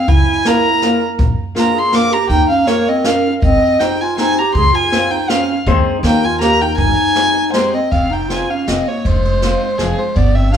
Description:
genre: musette waltz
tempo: 161 BPM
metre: 3/4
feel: straight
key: Ab major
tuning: A4 = 440 Hz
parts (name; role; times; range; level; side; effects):
- dark violin; melody; 0.0-10.6 s; Ab4 to D6; -16 LUFS; equal; none
- dark clarinet; second line; 0.0-10.6 s; F3 to Bb4; -19 LUFS; right 2 dB; none
- upright bass; bass; 0.1-10.6 s; F1 to Eb2; -17 LUFS; equal; none
- jazz brush drum kit; drums; 0.1-10.6 s; hi-hat, kick drum, ride cymbal, snare drum; -21 LUFS; equal; none
- fingerpicked steel-string acoustic guitar; accompaniment; 0.5-10.6 s; Ab3 to C5; -19 LUFS; left 2 dB; none
room: moderate large studio reverb, RT60 1.2 s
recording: band playing live in one room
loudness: -12 LUFS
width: side -8 dB against mid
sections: 0.0-7.9 A section; 7.9-10.6 B section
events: none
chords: 0.1 Dbm6; 1.2 Bb7; 2.3 Eb9sus4; 3.4 Abmaj7; 4.6 Dbmaj7; 5.7 Ab/Eb; 6.0 Eb7; 6.8 Abmaj7; 7.9 Fm7

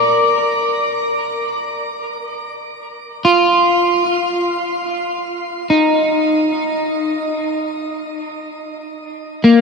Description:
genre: ambient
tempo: free time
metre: none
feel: none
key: Bb major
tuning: A4 = 440 Hz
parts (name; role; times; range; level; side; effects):
- electric guitar at the edge of break-up; solo; 0.0-9.6 s; Bb3 to D5; -15 LUFS; equal; analog chorus, diffuse ambient delay
room: wet shimmer reverb, RT60 7.4 s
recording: none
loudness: -15 LUFS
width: side -4 dB against mid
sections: 0.0-9.6 A section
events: none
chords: 0.0 Bb; 3.7 N.C.

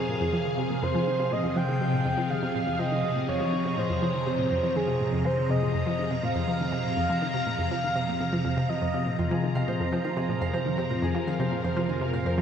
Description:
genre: ambient, sequencer-driven space music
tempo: 122 BPM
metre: 4/4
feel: straight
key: F minor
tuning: A4 = 439 Hz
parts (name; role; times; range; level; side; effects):
- breathy flute-like synth lead; melody; 0.0-9.2 s; Ab4 to G5; -30 LUFS; right 1 dB; wide subtle chorus, analog delay
- phased string machine; sustained chords; 0.0-12.4 s; C3 to Bb5; -28 LUFS; left 1 dB; ensemble chorus, phaser
- analog pluck; riff; 0.0-12.4 s; F2 to F3; -30 LUFS; equal; chorus, analog delay
- analog drone; bass; 0.0-12.4 s; F2; -42 LUFS; equal; none
- Celtic harp; arpeggios; 9.2-12.4 s; F4 to F5; -32 LUFS; right 2 dB; auto-pan, analog delay
room: wet huge ambient reverb, RT60 8.7 s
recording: none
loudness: -24 LUFS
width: side -8 dB against mid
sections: 0.0-12.4 A section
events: filter sweep on synth arpeggio sound 0.0-12.4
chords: 0.0 Fm

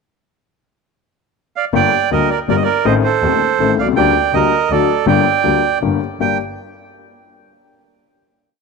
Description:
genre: tango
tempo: 162 BPM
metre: 3/4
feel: rubato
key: G minor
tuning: A4 = 439 Hz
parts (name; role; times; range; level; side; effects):
- bandoneon; melody; 1.6-6.4 s; A4 to G5; -15 LUFS; right 10 dB; none
- clear upright piano; accompaniment; 1.7-6.4 s; Eb1 to A4; -17 LUFS; left 12 dB; none
- clear double bass; bass; 1.7-6.4 s; G1 to Eb2; -22 LUFS; right 1 dB; none
room: light reverb, small room reverb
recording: 1960s-style stereo with parts hard left and right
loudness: -13 LUFS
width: side -4 dB against mid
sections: 0.6-1.7 pickup bar; 1.7-6.2 A section; 6.2-7.3 final chord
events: none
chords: 0.6 N.C.; 1.7 Gm; 2.9 Adim; 4.0 Gm/D; 4.7 D; 5.1 Gm

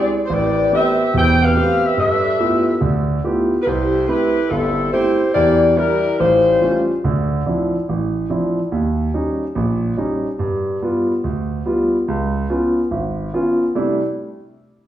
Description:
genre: jazz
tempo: 142 BPM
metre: 4/4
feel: swing 65% on 8ths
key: C major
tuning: A4 = 437 Hz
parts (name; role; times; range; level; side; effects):
- mellow saxophone section; melody; 0.0-6.8 s; G3 to G5; -16 LUFS; left 2 dB; none
- warm concert grand piano; accompaniment; 0.0-14.0 s; E1 to G4; -18 LUFS; right 1 dB; none
room: wet large studio reverb, RT60 1.3 s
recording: heard from further back in the room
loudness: -15 LUFS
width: side -12 dB against mid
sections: 0.0-7.0 A section; 7.0-13.8 B section; 13.8-14.9 C section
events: none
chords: 0.3 Am9; 2.0 G13; 3.7 C6; 5.3 Em7b5; 6.2 A7alt; 7.0 Dm9; 8.7 Eb7; 10.4 G7; 12.1 Db7; 13.8 C6

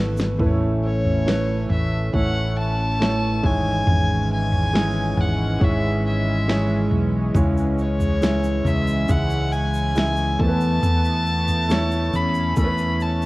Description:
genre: pop ballad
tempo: 69 BPM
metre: 4/4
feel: straight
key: A major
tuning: A4 = 440 Hz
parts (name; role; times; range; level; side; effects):
- felt-muted upright piano; accompaniment; 0.0-13.3 s; G#2 to E5; -25 LUFS; right 1 dB; cassette tape
- chorused pulse-width pad; sustained chords; 0.0-13.3 s; E3 to C#4; -28 LUFS; equal; cassette tape
- fingered electric bass; bass; 0.0-13.3 s; G#1 to E2; -23 LUFS; equal; none
- smooth R&B drum kit; drums; 0.2-12.8 s; kick drum, snare drum, toms; -23 LUFS; equal; cassette tape
- tube shaker; percussion; 0.2-0.4, 7.4-13.3 s; none; -49 LUFS; right 3 dB; none
- warm violin; melody; 0.8-13.3 s; C#5 to B5; -26 LUFS; left 1 dB; none
room: light reverb, studio reverb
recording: home recording on cassette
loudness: -18 LUFS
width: side -20 dB against mid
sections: 0.4-13.3 A section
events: drum fill 0.0-0.4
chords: 0.4 A; 3.4 E6/G#; 7.4 C#m; 10.4 Esus4

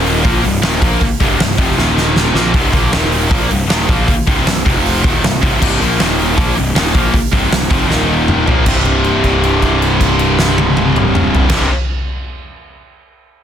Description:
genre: hard rock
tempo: 157 BPM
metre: 4/4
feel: straight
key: C minor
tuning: A4 = 440 Hz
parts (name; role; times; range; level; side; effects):
- distorted electric guitar; riff; 0.0-2.5, 5.6-11.7 s; C2 to Bb3; -20 LUFS; left 1 dB; distortion
- heavy high-gain guitar; riff; 0.0-11.7 s; C2 to Bb3; -15 LUFS; equal; distortion
- fuzz picked electric bass; bass; 0.0-11.7 s; C1 to Bb1; -18 LUFS; equal; overdrive
- huge arena drum kit; drums; 0.1-11.6 s; crash cymbal, hi-hat, kick drum, snare drum, toms; -15 LUFS; equal; none
room: small room reverb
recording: dense, heavily limited modern master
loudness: -11 LUFS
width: side -9 dB against mid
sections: 0.0-2.5 A section; 2.5-8.7 A section; 8.7-11.7 B section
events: drum fill 1.8-2.5, 7.9-8.7; held note 8.7-11.5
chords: 0.2 Cm; 1.8 Eb5; 2.4 Bb5; 2.5 C5; 2.9 Eb5; 3.3 Cm; 4.6 F5; 5.0 Cm; 6.0 Eb5; 6.4 Cm; 7.9 Eb5; 8.5 Bb5; 8.7 C5

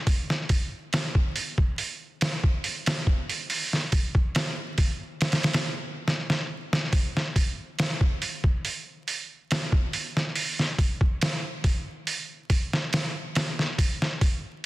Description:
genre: trip hop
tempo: 70 BPM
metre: 4/4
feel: straight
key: none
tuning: none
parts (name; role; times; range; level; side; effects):
- trip hop sampler-style drum kit; drums; 0.1-14.4 s; hi-hat, kick drum, snare drum; -24 LUFS; equal; studio reverb
room: light reverb, digital ambience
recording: dense, heavily limited modern master, vinyl crackle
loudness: -24 LUFS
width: side -18 dB against mid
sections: 0.0-6.9 A section; 6.9-14.7 B section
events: drum fill 6.1-6.9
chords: none

